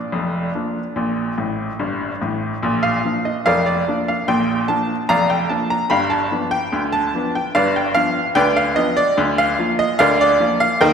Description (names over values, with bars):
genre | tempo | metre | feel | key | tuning
ragtime piano | 73 BPM | 2/4 | straight | Bb major | A4 = 436 Hz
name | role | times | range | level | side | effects
bright upright piano | solo | 0.0-10.9 s | F1 to B5 | -16 LUFS | equal | none
room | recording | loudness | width
wet church reverb, RT60 3.0 s | recorded in a church or concert hall | -16 LUFS | side -7 dB against mid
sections
0.0-2.6 A section; 2.6-10.9 A section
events
upright piano fill 1.4-2.6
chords
0.0 Bb; 5.9 G7; 9.2 Bb/D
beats
0.12 | 0.96 1.79 | 2.62 3.45 | 4.27 5.09 | 5.91 6.73 | 7.54 8.36 | 9.18 10.00 | 10.81